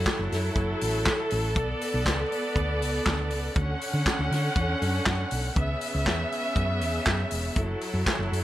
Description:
disco; 120 BPM; 4/4; straight; F# minor; A4 = 440 Hz
bright studio string section; sustained chords; 0.0-8.4 s; C#3 to F#5; -29 LUFS; equal
hollow-body short-scale fingered electric bass; bass; 0.0-8.4 s; E1 to D3; -28 LUFS; equal
warm soul drum kit; drums; 0.1-8.4 s; handclaps, hi-hat, kick drum, snare drum; -29 LUFS; equal
studio reverb; -24 LUFS; side -14 dB against mid
0.0-8.4 A section
0.0 F#m7; 1.6 Bm7; 3.6 Dmaj7; 5.6 C#m7; 7.6 F#m7

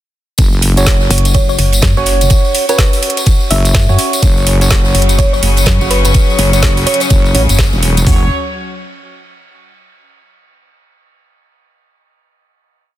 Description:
bass house; 125 BPM; 4/4; swing 61% on 16ths; A4 = 442 Hz
wobble bass; bass; 0.4-8.3 s; E1 to F#1; -13 LUFS; equal; chorus, sidechain pumping
garage drum kit; drums; 0.4-8.2 s; hi-hat, kick drum, toms; -12 LUFS; equal
garage drum kit; drums; 0.4-8.0 s; hi-hat, snare drum; -17 LUFS; right 1 dB
modern studio drum kit; drums; 0.4-8.0 s; ride cymbal, snare drum; -25 LUFS; right 4 dB; high-pass filter on cymbals, high-pass filter on snare, high-pass filter on room
tambourine; percussion; 0.4-8.0 s; -22 LUFS; left 2 dB
percussive organ stab; stabs; 0.8-8.3 s; C#4 to C#5; -19 LUFS; right 3 dB; chorus, sidechain pumping, digital delay
pulsing pluck wobble bass; bass; 1.1-7.7 s; F#1 to F#2; -12 LUFS; equal; chorus, tube saturation, sidechain pumping
thumb-piano-like synth pluck; melody; 1.3-7.1 s; B4 to E5; -21 LUFS; equal; chorus, digital delay
bright chamber string section; sustained chords; 4.2-8.3 s; C#3 to C#5; -19 LUFS; left 3 dB; sidechain pumping
studio ambience; dense, heavily limited modern master; -9 LUFS; side -14 dB against mid
0.4-8.1 drop; 8.1-10.0 final chord
drop 0.4-8.1
0.4 F#5

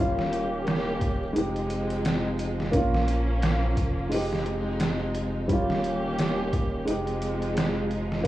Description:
trip hop; 87 BPM; 4/4; swing 58% on 16ths; F minor; A4 = 440 Hz
dark upright piano; accompaniment; 0.0-8.3 s; G3 to G4; -29 LUFS; equal; harmonic tremolo, tape echo
warm studio string section; sustained chords; 0.0-8.3 s; Eb3 to G4; -30 LUFS; right 1 dB
warm sub bass; bass; 0.0-8.3 s; Eb1 to Bb1; -31 LUFS; equal
trip hop sampler-style drum kit; drums; 0.2-8.3 s; hi-hat, kick drum, snare drum; -29 LUFS; equal; overdrive
digital ambience; worn, warbling old tape, cassette tape, vinyl crackle, warbly pitch drift, studio reverb; -24 LUFS; side -14 dB against mid
0.0-8.3 A section
0.0 Eb7; 1.4 Fm7; 2.7 Bbm; 4.1 Fm7; 5.5 Eb7; 6.9 Fm7

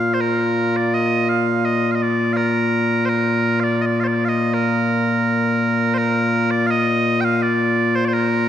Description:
scottish traditional, Scottish pipe music; 83 BPM; 2/4; straight; Bb major; A4 = 440 Hz
loud bright bagpipes; solo; 0.0-8.5 s; Bb2 to G5; -16 LUFS; left 1 dB
wet concert hall reverb, RT60 1.8 s; recorded in a church or concert hall; -16 LUFS; side -10 dB against mid
0.0-6.0 A section; 6.0-8.5 B section

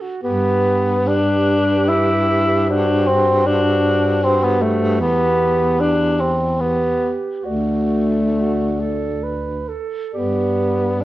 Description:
classical, lyrical piece for single-reed quartet; 66-79 BPM; 3/4; rubato; G major; A4 = 441 Hz
mellow alto saxophone; second line; 0.0-11.0 s; F#4 to B4; -24 LUFS; right 5 dB
dark clarinet; melody; 0.2-11.0 s; B4 to D5; -28 LUFS; left 5 dB
mellow tenor saxophone; accompaniment; 0.2-11.0 s; A3 to E4; -17 LUFS; left 1 dB
clear baritone saxophone; bass; 0.2-11.0 s; D2 to G2; -21 LUFS; right 1 dB
moderate stone room reverb, RT60 1.1 s; worn, warbling old tape, cassette tape, warbly pitch drift; -15 LUFS; side -15 dB against mid
0.2-11.0 A section
0.2 G; 2.7 D7/G; 5.0 Em; 7.4 D; 10.1 G

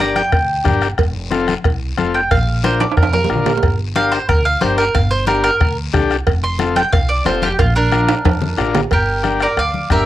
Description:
latin, cumbia; 182 BPM; 4/4; straight; G minor; A4 = 440 Hz
bowl-back mandolin; melody; 0.0-10.1 s; D4 to C6; -18 LUFS; right 2 dB; cassette tape
overdriven combo organ; accompaniment; 0.0-10.1 s; C4 to Bb4; -19 LUFS; left 5 dB; cassette tape
upright bass; bass; 0.0-10.1 s; F1 to F2; -20 LUFS; right 1 dB
bombo; percussion; 0.0-10.1 s; -19 LUFS; left 1 dB
congas; percussion; 0.2-10.1 s; -25 LUFS; left 5 dB
guiro; percussion; 0.2-10.1 s; -33 LUFS; left 8 dB
cowbell and timbales; percussion; 0.3-9.7 s; -21 LUFS; right 9 dB
light reverb; home recording on cassette; -13 LUFS; side -13 dB against mid
0.0-8.9 A section; 8.9-10.1 B section
mandolin solo 0.0-8.9; drum fill 2.8-3.6, 7.9-8.9
0.0 Gm; 1.0 F; 2.3 Bb; 3.6 Gm; 6.3 F; 7.6 Bb; 8.9 Gm

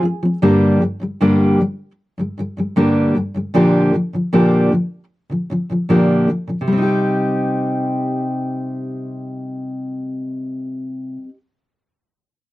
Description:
pop; 77 BPM; 4/4; straight; C minor; A4 = 439 Hz
fingerpicked steel-string acoustic guitar; solo; 0.0-11.4 s; G2 to G4; -16 LUFS; equal
light reverb; dry, close 1970s-style studio recording; -16 LUFS; side -17 dB against mid
0.0-6.7 A section; 6.7-9.8 B section
0.4 Gm; 3.5 Bb6; 6.7 Cm

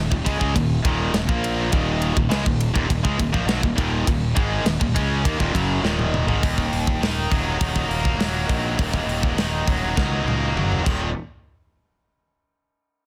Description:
heavy metal; 102 BPM; 4/4; straight; Eb minor; A4 = 440 Hz
heavy high-gain guitar; riff; 0.0-11.1 s; Eb2 to Eb4; -30 LUFS; equal; distortion
tight distorted guitar; riff; 0.0-11.1 s; Eb2 to Eb4; -27 LUFS; equal; distortion
fuzz fingered electric bass; bass; 0.0-11.1 s; Eb1 to Eb2; -28 LUFS; equal; overdrive
tight metal drum kit; drums; 0.1-11.0 s; crash cymbal, hi-hat, kick drum, ride cymbal, snare drum, toms; -26 LUFS; equal
little or no reverb; dense, heavily limited modern master; -22 LUFS; mono
0.0-6.4 A section; 6.4-11.1 B section; 11.1-13.1 C section
drum fill 5.8-6.4, 10.0-11.1
0.0 Ebm; 10.8 Eb5; 11.1 N.C.

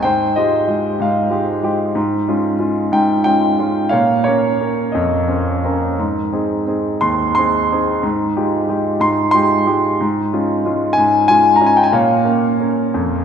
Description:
classical, lyrical solo piano; 56-64 BPM (dotted quarters); 6/8; rubato; F minor; A4 = 440 Hz
clear grand piano; solo; 0.0-13.2 s; Eb2 to C6; -14 LUFS; equal
wet church reverb, RT60 2.7 s; recorded in a church or concert hall; -14 LUFS; side -7 dB against mid
0.0-13.2 A section
0.0 Fmadd9/Ab; 2.0 Db/Ab; 3.9 Bbmadd9; 6.0 Ab; 8.0 Fmadd9/Ab; 10.0 Db/Ab; 11.9 Bbm

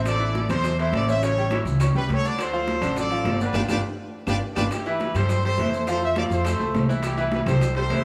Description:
latin, salsa; 206 BPM; 4/4; straight; C major; A4 = 438 Hz
bright grand piano; accompaniment; 0.0-8.0 s; C3 to C#6; -30 LUFS; equal
upright bass; bass; 0.0-8.0 s; G1 to G2; -27 LUFS; equal
clear trumpet section; melody; 0.1-8.0 s; E4 to E5; -30 LUFS; equal
bongos; percussion; 0.1-8.0 s; -38 LUFS; equal
claves; percussion; 0.1-8.0 s; -41 LUFS; equal
congas; percussion; 0.1-8.0 s; -35 LUFS; equal
maracas; percussion; 0.1-8.0 s; -46 LUFS; equal
timbales; percussion; 0.1-8.0 s; -36 LUFS; equal
moderate plate reverb, RT60 3.2 s; small room ambience; -23 LUFS; mono
0.0-4.7 A section; 4.7-8.0 B section
drum fill 3.5-4.7; band accent 3.5-4.7
0.1 Am; 1.2 A7; 2.4 Dm7; 3.5 G7(no3); 4.7 C; 5.9 F; 7.0 C

